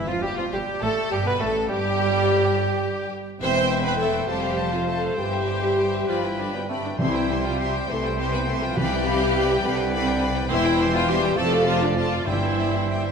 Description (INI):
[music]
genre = quick classical-period movement for symphony orchestra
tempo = 68 BPM (dotted quarters)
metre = 6/8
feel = uneven beats, rubato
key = C major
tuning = A4 = 440 Hz
[part]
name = clear oboe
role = second line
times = 0.0-13.1 s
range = F4 to D5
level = -33 LUFS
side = right 1 dB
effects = none
[part]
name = rich chamber violin section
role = second line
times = 0.0-13.1 s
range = F4 to G5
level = -33 LUFS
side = left 4 dB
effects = none
[part]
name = warm bassoon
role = accompaniment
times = 0.0-13.1 s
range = D3 to B3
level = -30 LUFS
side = right 1 dB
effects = none
[part]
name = rich studio cello section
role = bass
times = 0.0-13.1 s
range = E2 to C3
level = -30 LUFS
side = right 2 dB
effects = none
[part]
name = warm studio double bass section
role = bass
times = 0.0-13.1 s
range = E1 to C2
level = -30 LUFS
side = right 4 dB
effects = none
[part]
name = rich chamber violin section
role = melody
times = 0.1-13.1 s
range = F4 to C6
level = -32 LUFS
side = left 4 dB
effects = none
[part]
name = mellow hollow silver concert flute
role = second line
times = 0.1-13.1 s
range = F4 to G5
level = -32 LUFS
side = left 2 dB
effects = none
[part]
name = rich studio viola section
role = accompaniment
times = 0.1-13.1 s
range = B3 to C5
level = -26 LUFS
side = equal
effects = none
[part]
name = mellow French horn section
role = sustained chords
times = 0.1-13.1 s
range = B2 to C4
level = -30 LUFS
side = left 4 dB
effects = none
[part]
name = timpani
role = percussion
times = 7.0-9.6, 12.3-13.1 s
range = G2 to C3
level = -30 LUFS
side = left 1 dB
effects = none
[sound]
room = wet scoring stage reverb, RT60 2.0 s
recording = none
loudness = -20 LUFS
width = side -6 dB against mid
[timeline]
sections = 0.0-13.1 A section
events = none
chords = 0.0 G9; 1.7 N.C.; 3.4 C/E; 4.3 F; 5.2 C/G; 6.1 G; 7.0 C; 8.8 G7/C; 10.5 C/E; 11.4 Dm/F; 12.3 C/G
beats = 0.83 | 1.69 2.55 | 3.41 4.28 | 5.17 6.08 | 7.00 7.89 | 8.77 9.64 | 10.50 11.37 | 12.27